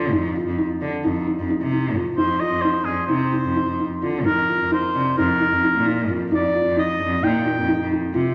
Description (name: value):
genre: contemporary instrumental, contemporary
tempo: 262 BPM (eighths)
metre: 9/8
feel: straight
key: unclear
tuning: A4 = 440 Hz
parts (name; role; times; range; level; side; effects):
- felt-muted upright piano; arpeggios; 0.0-8.3 s; D4 to F4; -25 LUFS; equal; none
- clear cello; bass; 0.0-8.3 s; F2 to D3; -27 LUFS; equal; none
- clear oboe; melody; 2.2-7.9 s; Ab4 to G5; -25 LUFS; equal; none
room: wet recital hall reverb, RT60 1.5 s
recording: none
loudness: -21 LUFS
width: mono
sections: 0.0-8.3 A section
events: none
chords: 0.0 F7(no3); 4.3 Eb5/F